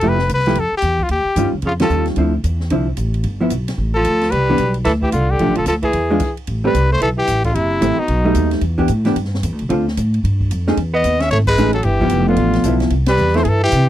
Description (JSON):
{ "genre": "jazz, small-group swing and bop", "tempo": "223 BPM", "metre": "4/4", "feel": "swing 61% on 8ths", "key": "C major, A minor from 6.5 s", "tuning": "A4 = 440 Hz", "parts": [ { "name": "clear trumpet", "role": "melody", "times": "0.0-8.5, 10.9-13.9 s", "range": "D#4 to E5", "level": "-18 LUFS", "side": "left 2 dB", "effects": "none" }, { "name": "vintage hollow-body jazz guitar", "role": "accompaniment", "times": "0.0-13.5 s", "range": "D3 to B4", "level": "-17 LUFS", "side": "right 1 dB", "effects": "none" }, { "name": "upright bass", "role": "bass", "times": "0.0-13.9 s", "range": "F1 to C3", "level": "-18 LUFS", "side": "equal", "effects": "none" }, { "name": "open jazz drum kit", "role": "drums", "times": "0.0-13.8 s", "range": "crash cymbal, hi-hat, kick drum, ride cymbal, snare drum", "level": "-28 LUFS", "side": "equal", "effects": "none" }, { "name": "warm tenor saxophone", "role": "second line", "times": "1.7-8.5, 10.9-13.9 s", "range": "B2 to C#4", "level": "-21 LUFS", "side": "right 4 dB", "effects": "none" } ], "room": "little or no reverb", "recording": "dry, close 1970s-style studio recording", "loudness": "-14 LUFS", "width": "side -12 dB against mid", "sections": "0.0-6.5 A section; 6.5-13.9 B section", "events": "band accent 1.8, 11.4, 13.1; stop 6.2", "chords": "0.0 Fmaj9; 1.1 Eb9; 2.2 Dm9; 3.2 G9; 4.3 Cmaj7sus2; 5.4 Bm7b5; 5.9 E7b9; 6.5 Am9; 7.5 F#m7b5; 8.1 B7b13; 8.6 Em7; 9.7 Dm7; 10.2 Gsus2; 10.8 Amaj9#11; 11.8 G13; 12.9 C6" }